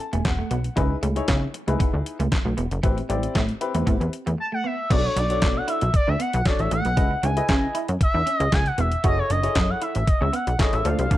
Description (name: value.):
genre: early-eighties boogie funk.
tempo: 116 BPM.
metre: 4/4.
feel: straight.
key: B dorian.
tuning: A4 = 440 Hz.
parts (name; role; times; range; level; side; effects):
warm baby grand piano; accompaniment; 0.0-11.2 s; C4 to A5; -29 LUFS; left 4 dB; none.
semi-hollow electric guitar; riff; 0.1-11.2 s; G3 to F#4; -32 LUFS; right 3 dB; analog chorus.
plucky analog bass; bass; 0.1-11.2 s; E1 to C#3; -24 LUFS; equal; none.
detuned 8-bit digital drum machine; drums; 0.1-11.2 s; crash cymbal, handclaps, hi-hat, kick drum, snare drum; -23 LUFS; equal; none.
expressive portamento lead; melody; 4.4-11.2 s; C#5 to A5; -25 LUFS; equal; chorus, slapback echo.
room: digital ambience.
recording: dark, warm production.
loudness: -20 LUFS.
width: side -14 dB against mid.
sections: 0.0-4.9 A section; 4.9-11.2 B section.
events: grand piano fill 0.0-0.8; break 4.4-4.9.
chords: 0.0 F#m9; 0.8 C#m9; 2.8 Am9; 4.9 Bm9; 7.0 C#m9; 9.0 F#m9.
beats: 0.25 | 0.77 1.28 1.80 2.32 | 2.84 3.35 3.87 4.39 | 4.91 5.42 5.94 6.46 | 6.97 7.49 8.01 8.53 | 9.04 9.56 10.08 10.60 | 11.11.